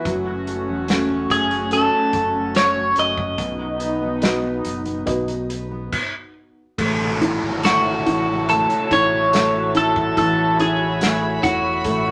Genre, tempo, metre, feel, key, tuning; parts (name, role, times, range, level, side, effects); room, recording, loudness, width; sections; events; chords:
pop ballad; 71 BPM; 4/4; straight; A4 = 440 Hz
felt-muted upright piano; accompaniment; 0.0-12.1 s; E3 to D#5; -26 LUFS; equal
airy breathy pad; sustained chords; 0.0-12.1 s; A3 to B5; -29 LUFS; equal; chorus
fingerpicked steel-string acoustic guitar; arpeggios; 0.0-12.1 s; B2 to C#5; -35 LUFS; equal
sub bass with octave; bass; 0.1-12.1 s; E1 to B1; -33 LUFS; equal
loose indie drum kit; drums; 0.1-12.0 s; crash cymbal, hi-hat, kick drum, snare drum; -27 LUFS; equal
twelve-string electric guitar; melody; 1.3-12.1 s; F#4 to D#5; -21 LUFS; equal; spring reverb
downlifter; sound effects; 6.8-12.1 s; -32 LUFS; equal
tambourine; percussion; 7.6-11.2 s; -40 LUFS; equal
moderate studio reverb, RT60 0.7 s; -20 LUFS; mono
0.0-6.8 A section; 6.8-12.1 B section
stop 5.9-6.8
0.1 F#m; 3.4 B; 6.8 A6